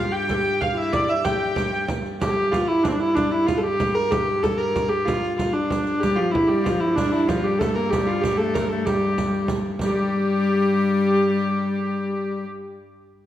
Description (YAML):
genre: medieval dance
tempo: 126 BPM (dotted quarters)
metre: 6/8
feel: straight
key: G dorian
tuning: A4 = 441 Hz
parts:
  - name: dark hurdy-gurdy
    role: melody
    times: 0.0-12.4 s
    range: C4 to G5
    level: -22 LUFS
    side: equal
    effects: none
  - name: bright reedy bass recorder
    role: second line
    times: 0.0-1.9, 6.0-12.4 s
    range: F3 to A4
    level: -24 LUFS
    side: left 3 dB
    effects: none
  - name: clear viola da gamba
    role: drone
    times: 0.0-12.5 s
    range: G2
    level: -31 LUFS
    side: right 2 dB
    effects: none
  - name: frame drum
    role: percussion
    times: 0.1-9.9 s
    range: none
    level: -30 LUFS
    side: right 2 dB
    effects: none
  - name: riq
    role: percussion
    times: 0.3-10.0 s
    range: none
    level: -31 LUFS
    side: right 2 dB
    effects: none
room: wet scoring stage reverb, RT60 1.8 s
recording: none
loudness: -19 LUFS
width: side -12 dB against mid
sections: 0.0-2.2 A section; 2.2-9.8 A section; 9.8-11.7 B section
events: speeding up 0.0-11.7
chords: none